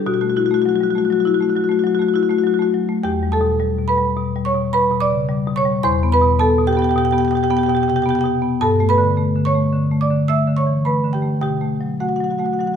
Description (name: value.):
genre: classical, contemporary piece for solo marimba.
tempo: 100-109 BPM.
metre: 5/4.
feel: rubato.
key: E dorian.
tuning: A4 = 437 Hz.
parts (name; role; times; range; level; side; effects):
marimba with medium hard mallets; solo; 0.0-12.8 s; E2 to E6; -15 LUFS; left 1 dB; none.
room: wet recital hall reverb, RT60 1.6 s.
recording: minimal, uncompressed stereo recording.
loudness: -15 LUFS.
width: side -7 dB against mid.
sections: 0.0-3.0 A section; 3.0-12.8 B section.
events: none.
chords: 0.1 B7sus4; 3.0 Em7; 5.8 Cmaj7/E; 8.6 G69; 11.4 B7(no3).